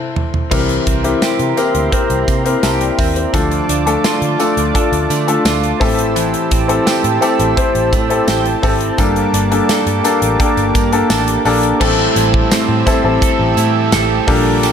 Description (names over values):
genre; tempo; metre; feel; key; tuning
1980s-style pop; 85 BPM; 4/4; straight; unclear; A4 = 440 Hz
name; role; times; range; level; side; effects
warm concert grand piano; accompaniment; 0.0-14.7 s; G2 to A5; -16 LUFS; left 4 dB; none
modern studio drum kit; drums; 0.2-14.7 s; crash cymbal, hi-hat, kick drum, snare drum, tambourine, toms; -18 LUFS; equal; none
brassy analog pad; sustained chords; 0.5-14.7 s; Bb3 to E6; -21 LUFS; right 3 dB; chorus
direct-recorded clean electric guitar; riff; 0.5-14.7 s; E3 to A4; -20 LUFS; right 10 dB; lush chorus, ping-pong delay
vintage muted picked electric bass; bass; 0.5-14.7 s; G1 to D3; -20 LUFS; equal; none
tambourine; percussion; 0.5-14.7 s; none; -30 LUFS; right 13 dB; none
fuzz guitar; accompaniment; 11.8-14.7 s; G2 to A3; -21 LUFS; right 3 dB; distortion, ensemble chorus
room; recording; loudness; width
light reverb; none; -12 LUFS; side -8 dB against mid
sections
0.5-11.8 A section; 11.8-14.7 B section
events
drum fill 0.0-0.5; band accent 0.0-0.5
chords
0.0 Am/E; 0.5 C7; 3.3 Dm; 5.8 Am7; 9.0 Gmadd9; 11.8 Am7